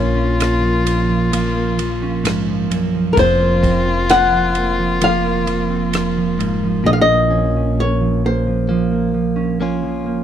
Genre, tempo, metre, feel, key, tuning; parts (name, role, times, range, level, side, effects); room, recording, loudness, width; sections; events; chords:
acoustic folk-pop ballad; 65 BPM; 4/4; straight; Bb minor; A4 = 440 Hz
flamenco guitar; melody; 0.0-10.0 s; Bb4 to Gb5; -17 LUFS; left 2 dB
dark violin; second line; 0.0-6.8 s; F4; -22 LUFS; left 4 dB
direct-recorded clean electric guitar; accompaniment; 0.0-10.2 s; F2 to F4; -22 LUFS; left 3 dB
concert harp; arpeggios; 0.0-10.2 s; F3 to Db4; -21 LUFS; right 7 dB
upright bass; bass; 0.0-10.2 s; F1 to Bb1; -23 LUFS; equal
compact cocktail drum kit; drums; 0.4-6.6 s; kick drum, ride cymbal, rim click; -26 LUFS; right 1 dB
little or no reverb; dry, close 1970s-style studio recording; -14 LUFS; side -9 dB against mid
0.0-10.2 A section
0.0 Bbm; 3.2 Fsus4; 6.8 Bbm